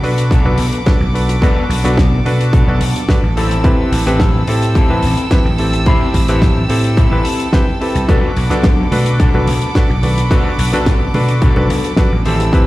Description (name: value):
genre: nu-disco, nu disco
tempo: 108 BPM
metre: 4/4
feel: straight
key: unclear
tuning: A4 = 440 Hz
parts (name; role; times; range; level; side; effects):
- warm electric grand piano; accompaniment; 0.0-12.7 s; C4 to B5; -20 LUFS; equal; sidechain pumping, tape echo
- clear studio violin section; sustained chords; 0.0-12.7 s; A4 to E6; -25 LUFS; right 1 dB; sidechain pumping
- vintage slap bass; bass; 0.0-12.6 s; A1 to B2; -16 LUFS; equal; none
- damped 70s drum kit; drums; 0.0-12.7 s; hi-hat, rim click, snare drum; -23 LUFS; left 1 dB; studio ambience
- electric guitar at the edge of break-up; riff; 0.3-12.7 s; B3 to G5; -22 LUFS; left 3 dB; lush chorus, tape echo
- electronic kick drum; drums; 0.3-12.6 s; none; -13 LUFS; equal; studio ambience
- bongos and congas; percussion; 8.6-12.5 s; none; -25 LUFS; right 2 dB; none
room: studio ambience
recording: played on a big sound system in a bare room, large studio reverb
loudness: -11 LUFS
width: side -17 dB against mid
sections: 0.0-12.7 A section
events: clean electric guitar fill 7.3-8.1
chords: 0.0 Bm7; 3.4 Am7; 8.1 Bm7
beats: 0.31 0.87 | 1.42 1.98 2.53 3.09 | 3.65 4.20 4.76 5.31 | 5.87 6.42 6.98 7.53 | 8.09 8.64 9.20 9.76 | 10.31 10.87 11.42 11.98 | 12.53